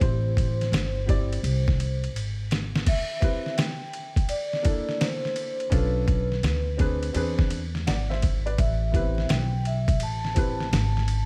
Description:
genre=hip hop, jazz-hop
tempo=84 BPM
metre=4/4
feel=swing 66% on 16ths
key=unclear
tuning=A4 = 440 Hz
part: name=vibraphone with soft mallets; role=melody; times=0.0-11.3 s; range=B4 to A5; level=-34 LUFS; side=equal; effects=none
part: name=warm upright piano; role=accompaniment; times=0.0-10.7 s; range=Bb3 to F#5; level=-35 LUFS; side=equal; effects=none
part: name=upright bass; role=bass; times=0.0-11.3 s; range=G1 to E2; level=-29 LUFS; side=equal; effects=none
part: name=trip hop sampler-style drum kit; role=drums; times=0.0-11.3 s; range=crash cymbal, hi-hat, kick drum, ride cymbal, snare drum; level=-28 LUFS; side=equal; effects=overdrive
room=small room ambience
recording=vinyl crackle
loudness=-25 LUFS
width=mono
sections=0.0-2.9 A section; 2.9-11.3 B section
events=drum fill 2.2-2.9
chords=0.0 Am7; 2.9 Cmaj7; 4.3 Bbmaj9#11; 5.7 Bm7b5; 7.2 E7b13; 8.6 Am9

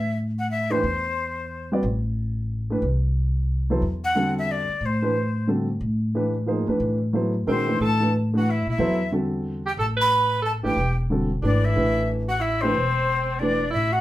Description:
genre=modal jazz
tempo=181 BPM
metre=3/4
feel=swing 63% on 8ths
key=A dorian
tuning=A4 = 440 Hz
part: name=breathy bright jazz flute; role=melody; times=0.0-1.7, 4.0-14.0 s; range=C5 to B5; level=-25 LUFS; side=left 2 dB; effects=none
part: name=upright bass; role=bass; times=0.0-14.0 s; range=E1 to Bb2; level=-25 LUFS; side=equal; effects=none
part: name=dark grand piano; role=accompaniment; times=0.7-13.6 s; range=D3 to D5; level=-24 LUFS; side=right 1 dB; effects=none
part: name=warm alto saxophone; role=second line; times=7.5-14.0 s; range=C4 to B4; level=-28 LUFS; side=right 2 dB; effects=none
room=moderate studio ambience, RT60 0.5 s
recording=band playing live in one room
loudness=-21 LUFS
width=side -15 dB against mid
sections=0.0-14.0 A section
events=none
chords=0.0 Am9

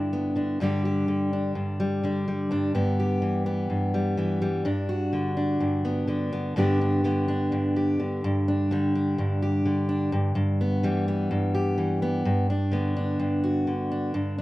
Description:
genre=folk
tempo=126 BPM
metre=4/4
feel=straight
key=G major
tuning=A4 = 440 Hz
part: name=fingerpicked steel-string acoustic guitar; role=solo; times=0.0-14.4 s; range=G2 to G4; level=-23 LUFS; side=equal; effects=none
room=little or no reverb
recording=rough home demo mix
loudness=-23 LUFS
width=side -17 dB against mid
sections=0.0-6.6 A section; 6.6-14.4 B section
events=none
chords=0.0 G; 0.6 Dsus4/G; 2.8 Em/G; 4.7 Bm/G; 6.6 G; 8.2 Dsus4/G; 10.4 Em/G; 12.2 Bm/G

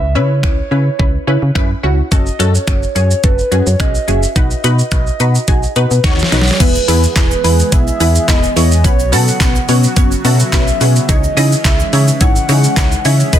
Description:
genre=dance-pop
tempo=107 BPM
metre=4/4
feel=straight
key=C# minor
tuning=A4 = 442 Hz
part: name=hollow clarinet-like synth lead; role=melody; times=0.0-13.4 s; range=B4 to F#5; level=-20 LUFS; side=right 1 dB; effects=chorus, phaser, ping-pong delay
part: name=punchy chord stab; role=accompaniment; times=0.0-13.4 s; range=B3 to E5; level=-18 LUFS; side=left 1 dB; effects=chorus, phaser, sidechain pumping
part: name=solid FM bass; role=bass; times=0.0-13.4 s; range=E1 to C#3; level=-14 LUFS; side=equal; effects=sidechain pumping
part: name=pop drum kit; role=drums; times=0.4-13.4 s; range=crash cymbal, finger snaps, handclaps, hi-hat, kick drum, shaker, snare drum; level=-14 LUFS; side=equal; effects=overdrive
part: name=warm analog pad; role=sustained chords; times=6.6-13.4 s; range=B2 to G#4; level=-23 LUFS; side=equal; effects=chorus, sidechain pumping
part: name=tube shaker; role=percussion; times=6.6-13.4 s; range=none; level=-30 LUFS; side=right 14 dB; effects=none
room=digital ambience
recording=dense, heavily limited modern master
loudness=-10 LUFS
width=side -10 dB against mid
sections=0.0-6.6 A section; 6.6-13.4 B section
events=drum fill 6.0-6.6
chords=0.0 C#m7; 2.1 F#m; 4.4 B; 6.6 E; 8.8 Bsus2; 11.1 C#madd9

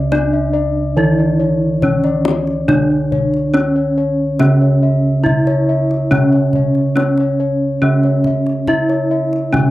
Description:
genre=Javanese gamelan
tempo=70 BPM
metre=4/4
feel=straight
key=unclear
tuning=A4 = 440 Hz
part: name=gamelan-type bronze metallophone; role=melody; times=0.0-9.7 s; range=C#4 to E4-30c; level=-17 LUFS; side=equal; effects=none
part: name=gamelan-type bronze metallophone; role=accompaniment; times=0.0-9.7 s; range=C#3 to E3-30c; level=-18 LUFS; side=right 3 dB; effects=none
part: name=gamelan-type bossed gongs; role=bass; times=0.0-9.7 s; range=C#2 to D4+20c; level=-21 LUFS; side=left 1 dB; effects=none
part: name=gamelan-type bossed gongs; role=arpeggios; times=0.1-9.7 s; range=C#5 to G#5-30c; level=-20 LUFS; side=left 4 dB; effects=none
part: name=kendang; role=percussion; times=0.1-9.7 s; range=none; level=-22 LUFS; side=left 3 dB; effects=none
room=moderate booth ambience, RT60 0.2 s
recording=dry, close 1970s-style studio recording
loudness=-12 LUFS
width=side -16 dB against mid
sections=0.0-9.7 A section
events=none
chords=none

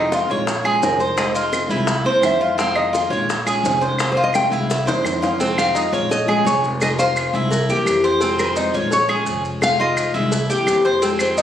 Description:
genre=latin, Cuban son and guajira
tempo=171 BPM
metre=4/4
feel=straight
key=F minor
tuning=A4 = 440 Hz
part: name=nylon-string guitar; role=melody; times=0.0-11.4 s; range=Bb4 to G5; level=-22 LUFS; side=left 1 dB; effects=none
part: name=picked steel-string acoustic guitar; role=accompaniment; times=0.0-11.4 s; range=C3 to F4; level=-25 LUFS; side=left 2 dB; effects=none
part: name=Cuban tres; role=arpeggios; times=0.0-11.4 s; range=C4 to Db5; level=-19 LUFS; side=right 1 dB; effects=none
part: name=upright bass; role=bass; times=0.0-11.4 s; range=F1 to F2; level=-27 LUFS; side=right 1 dB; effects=none
part: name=bongos and cowbell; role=percussion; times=0.1-11.4 s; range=none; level=-26 LUFS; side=left 3 dB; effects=none
part: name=maracas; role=percussion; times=0.1-11.4 s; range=none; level=-32 LUFS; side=right 1 dB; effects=none
part: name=claves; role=percussion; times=0.6-11.4 s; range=none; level=-28 LUFS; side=equal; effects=none
room=moderate studio reverb, RT60 0.7 s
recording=recorded on a phone in the room, studio reverb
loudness=-16 LUFS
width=side -10 dB against mid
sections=0.0-5.4 A section; 5.4-11.4 B section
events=nylon-string guitar solo 0.0-5.4; drum fill 4.7-5.4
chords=0.5 Bbm7; 1.2 Fm7; 1.9 C7; 2.6 Fm7; 3.3 Bbm7; 4.0 Fm7; 4.7 C7; 5.4 Fm7; 6.1 Bbm7; 6.8 Fm7; 7.5 C7; 8.2 Fm7; 8.9 Bbm7; 9.6 Fm7; 10.3 C7

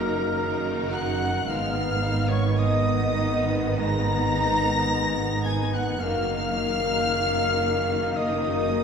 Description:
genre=classical, slow romantic movement for symphony orchestra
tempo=55 BPM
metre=4/4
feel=rubato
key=Eb minor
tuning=A4 = 440 Hz
part: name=rich chamber violin section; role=melody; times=0.0-8.8 s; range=Bb5 to Bb6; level=-32 LUFS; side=left 3 dB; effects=none
part: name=dark clarinet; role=second line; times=0.0-8.8 s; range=Bb4 to Bb5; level=-33 LUFS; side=left 1 dB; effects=none
part: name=rich chamber violin section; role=second line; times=0.0-8.8 s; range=Ab3 to Bb4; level=-35 LUFS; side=left 1 dB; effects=none
part: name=small flute group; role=second line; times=0.0-8.8 s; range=Bb4 to Bb5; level=-32 LUFS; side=equal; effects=none
part: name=warm oboe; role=second line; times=0.0-8.8 s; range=Bb4 to Bb5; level=-32 LUFS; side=right 1 dB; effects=none
part: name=rich chamber viola section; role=accompaniment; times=0.0-8.8 s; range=Eb3 to Cb4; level=-32 LUFS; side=equal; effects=none
part: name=warm French horn section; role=sustained chords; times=0.0-8.8 s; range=Bb3 to Eb4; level=-29 LUFS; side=left 5 dB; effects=none
part: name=clear chamber cello section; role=bass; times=0.0-8.8 s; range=Gb2 to Ab2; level=-31 LUFS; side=right 4 dB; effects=none
part: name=warm chamber double bass section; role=bass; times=0.0-8.8 s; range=Gb1 to Ab1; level=-29 LUFS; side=right 4 dB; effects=none
room=wet scoring stage reverb, RT60 1.8 s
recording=heard from further back in the room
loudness=-22 LUFS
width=side -6 dB against mid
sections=0.0-8.8 A section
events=none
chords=0.0 Ebm/Gb; 1.5 Abm; 6.0 Ebm/Gb

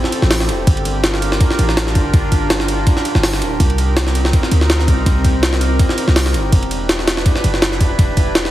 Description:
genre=drum and bass, jungle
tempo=164 BPM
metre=4/4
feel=swing 54% on 16ths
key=unclear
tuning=A4 = 440 Hz
part: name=warbly tape-like pad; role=sustained chords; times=0.0-8.5 s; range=C4 to B4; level=-21 LUFS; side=right 1 dB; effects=chorus, built-in reverb
part: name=jungle sampler-style drum kit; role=drums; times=0.0-8.5 s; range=hi-hat, kick drum, ride cymbal, snare drum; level=-15 LUFS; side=equal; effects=none
part: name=warm 808-style bass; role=bass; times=0.2-8.5 s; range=D1 to D2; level=-17 LUFS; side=equal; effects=none
room=light reverb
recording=heavily compressed radio sound, vinyl crackle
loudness=-13 LUFS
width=side -14 dB against mid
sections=0.0-8.5 A section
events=none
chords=0.0 Am7; 0.7 Gm7; 3.6 Cm7; 6.5 Em7

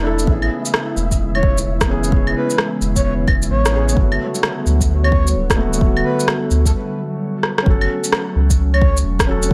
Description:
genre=future garage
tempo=130 BPM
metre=4/4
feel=swing 64% on 16ths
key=F# minor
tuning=A4 = 440 Hz
part: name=felt-muted upright piano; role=accompaniment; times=0.0-9.5 s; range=A3 to A4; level=-27 LUFS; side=equal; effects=sidechain pumping, dub echo
part: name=warbly tape-like pad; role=sustained chords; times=0.0-9.5 s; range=C#3 to C#5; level=-26 LUFS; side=equal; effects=chorus, built-in reverb, sidechain pumping
part: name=warm sub bass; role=bass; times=0.0-9.5 s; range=D1 to D2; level=-20 LUFS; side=equal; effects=sidechain pumping
part: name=flickering grainy texture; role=texture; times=0.0-6.7 s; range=E4 to E5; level=-37 LUFS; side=equal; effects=none
part: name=electronic shaker, claves and rim click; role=drums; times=0.2-9.5 s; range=none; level=-23 LUFS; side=equal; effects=none
part: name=electronic kick drum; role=drums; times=0.3-9.5 s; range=none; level=-19 LUFS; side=equal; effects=none
part: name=breathy flute-like synth lead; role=melody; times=1.3-9.0 s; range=A4 to C#5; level=-27 LUFS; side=equal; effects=subtle chorus, dub echo
room=light reverb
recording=none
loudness=-17 LUFS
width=mono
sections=0.0-7.7 A section; 7.7-9.5 B section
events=filter sweep on felt piano 0.0-7.7; break 6.7-7.7; drum fill 7.4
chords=0.3 Amaj7; 4.0 Gmaj7; 7.7 F#m

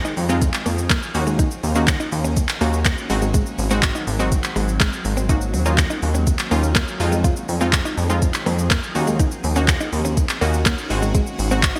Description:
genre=dance-pop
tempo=123 BPM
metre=4/4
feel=straight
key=Eb dorian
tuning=A4 = 438 Hz
part: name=analog pluck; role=accompaniment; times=0.0-11.8 s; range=Ab3 to Ab4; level=-28 LUFS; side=equal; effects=chorus, sidechain pumping
part: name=shimmering ambient pad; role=sustained chords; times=0.0-11.8 s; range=Eb3 to Ab4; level=-33 LUFS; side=equal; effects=chorus, built-in reverb, phaser, sidechain pumping
part: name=direct-recorded clean electric guitar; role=riff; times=0.0-11.8 s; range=Ab3 to F4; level=-30 LUFS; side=equal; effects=subtle chorus
part: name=smooth R&B drum kit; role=drums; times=0.0-11.8 s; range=handclaps, hi-hat, kick drum, shaker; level=-23 LUFS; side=equal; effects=gated reverb
part: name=chorused synth bass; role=bass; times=0.2-11.7 s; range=Ab1 to F2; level=-24 LUFS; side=equal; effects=sidechain pumping
room=light reverb, digital ambience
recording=bright 1980s-style digital production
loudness=-20 LUFS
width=mono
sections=0.0-11.8 A section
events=none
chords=0.0 Fm7; 1.1 Ebm7; 3.1 Ab7; 5.3 Ebm7; 7.0 Fm7; 9.0 Ebm7; 10.9 Ab7

